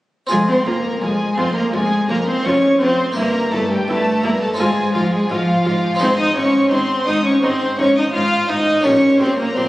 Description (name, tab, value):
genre	classical, baroque-style concerto movement with solo episodes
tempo	84 BPM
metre	4/4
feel	straight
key	F minor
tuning	A4 = 440 Hz
part	rich studio violin section	melody	0.3-9.7 s	F5 to F6	-25 LUFS	left 1 dB	none
part	warm cello	melody	0.3-9.7 s	F3 to F4	-17 LUFS	equal	none
part	warm studio violin section	second line	0.3-9.7 s	F4 to F5	-22 LUFS	equal	none
part	harpsichord	accompaniment	0.3-9.7 s	F2 to Ab4	-24 LUFS	equal	none
part	rich chamber viola section	accompaniment	0.3-9.6 s	Eb4 to G4	-28 LUFS	right 1 dB	none
part	warm chamber double bass section	bass	0.3-9.6 s	F1 to Bb1	-32 LUFS	right 1 dB	none
part	warm symphonic cello section	bass	0.3-9.6 s	F2 to Bb2	-27 LUFS	equal	none
room	moderate concert hall reverb, RT60 2.0 s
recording	recorded on a phone in the room, club reverb, compression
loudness	-14 LUFS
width	side -17 dB against mid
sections	0.3-9.7 A section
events	none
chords	0.3 Fm; 3.2 Edim/G; 4.6 Fm/Ab; 6.0 Ab; 8.9 Gdim/Bb